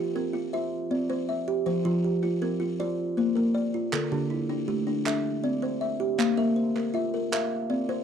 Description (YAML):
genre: southern african traditional, mbira-style interlocking cycle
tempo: 106 BPM (dotted quarters)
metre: 12/8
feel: straight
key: unclear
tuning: A4 = 437 Hz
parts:
  - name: buzzing kalimba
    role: arpeggios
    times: 0.0-8.0 s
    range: D3 to F5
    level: -28 LUFS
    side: left 5 dB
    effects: none
  - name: kalimba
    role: arpeggios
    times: 0.0-8.0 s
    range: D3 to F5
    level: -28 LUFS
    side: right 5 dB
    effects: none
  - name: group handclap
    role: percussion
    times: 3.9-7.5 s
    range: none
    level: -32 LUFS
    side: right 6 dB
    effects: none
room: light reverb, small room ambience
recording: dry, close 1970s-style studio recording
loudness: -25 LUFS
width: side -8 dB against mid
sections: 0.0-8.0 A section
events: none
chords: 0.0 F5; 0.5 C; 1.7 F5; 2.8 Bb; 3.9 Dm; 5.1 C; 6.2 Bb5; 7.3 C